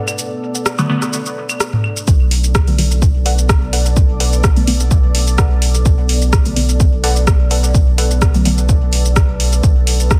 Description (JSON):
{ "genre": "dub techno", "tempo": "127 BPM", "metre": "4/4", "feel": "swing 54% on 16ths", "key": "B minor", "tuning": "A4 = 441 Hz", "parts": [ { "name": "deep dark ambient pad", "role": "sustained chords", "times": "0.0-10.2 s", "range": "B3 to D5", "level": "-28 LUFS", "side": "equal", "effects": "chorus, built-in reverb, sidechain pumping" }, { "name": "warbly dusty pluck", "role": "riff", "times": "0.0-0.1, 3.3-8.1 s", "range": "A4 to F#5", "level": "-29 LUFS", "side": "equal", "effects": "chorus, sidechain pumping, dub echo" }, { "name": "deep house drum kit", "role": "drums", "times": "0.1-10.2 s", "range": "hi-hat, rim click, shaker", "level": "-22 LUFS", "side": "equal", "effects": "soft clipping on snare" }, { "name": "electronic claves and toms", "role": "percussion", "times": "0.1-1.9 s", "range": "none", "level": "-22 LUFS", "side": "equal", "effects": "sidechain pumping on perc, sidechain pumping on toms, dub echo" }, { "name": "filtered dub chord stab", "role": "stabs", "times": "0.8-8.6 s", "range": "D3 to B3", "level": "-22 LUFS", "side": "equal", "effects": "phaser, sidechain pumping, dub echo" }, { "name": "warm sub bass", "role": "bass", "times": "2.1-10.2 s", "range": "B1", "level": "-17 LUFS", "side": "equal", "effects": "sidechain pumping" }, { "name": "electronic kick drum", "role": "drums", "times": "2.1-10.2 s", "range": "none", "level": "-15 LUFS", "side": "equal", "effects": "none" } ], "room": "digital ambience", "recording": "dense, heavily limited modern master", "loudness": "-14 LUFS", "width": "mono", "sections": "0.0-2.1 A section; 2.1-10.2 B section", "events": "filter sweep on ambient pad 0.0-2.1; filter sweep on synth stab 2.1-10.2", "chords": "0.0 Bm7" }